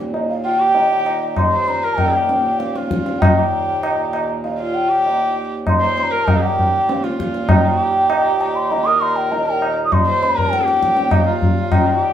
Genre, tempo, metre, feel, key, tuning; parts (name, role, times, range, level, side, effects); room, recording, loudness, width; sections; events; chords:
indian classical, Hindustani; 98 BPM; 7/4; straight; Eb raga bhupali; A4 = 440 Hz
pedal harmonium; drone; 0.0-12.1 s; Eb2 to Bb2; -27 LUFS; right 2 dB
tabla; percussion; 0.1-11.9 s; -18 LUFS; left 1 dB
mellow hollow bansuri; melody; 0.3-12.1 s; F5 to Eb6; -18 LUFS; left 1 dB
rich sarangi; second line; 0.4-12.1 s; F4 to C5; -24 LUFS; right 2 dB
wet studio reverb, RT60 0.7 s; band playing live in one room; -15 LUFS; side -10 dB against mid
0.0-3.2 A section; 3.2-12.1 B section